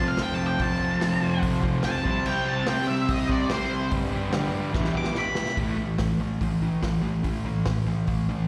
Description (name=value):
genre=garage rock duo or trio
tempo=145 BPM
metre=4/4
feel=straight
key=A minor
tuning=A4 = 440 Hz
part: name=octave-fuzz lead guitar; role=melody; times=0.0-5.6 s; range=C5 to D6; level=-32 LUFS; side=equal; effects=distortion, slapback echo
part: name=overdriven combo organ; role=sustained chords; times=0.0-5.6 s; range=D4 to C5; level=-37 LUFS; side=equal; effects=none
part: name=fuzz guitar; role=riff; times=0.0-8.5 s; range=E2 to C4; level=-28 LUFS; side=equal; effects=distortion, slapback echo
part: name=vintage drum kit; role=drums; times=0.2-8.2 s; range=crash cymbal, hi-hat, kick drum, snare drum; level=-32 LUFS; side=equal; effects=none
room=light reverb, studio reverb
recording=live gig heard through the venue's PA, recital hall reverb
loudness=-26 LUFS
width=mono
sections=0.0-5.6 A section; 5.6-8.5 B section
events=drum fill 4.7-5.6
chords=0.0 F; 2.0 C; 3.9 G; 4.7 Em; 5.6 A5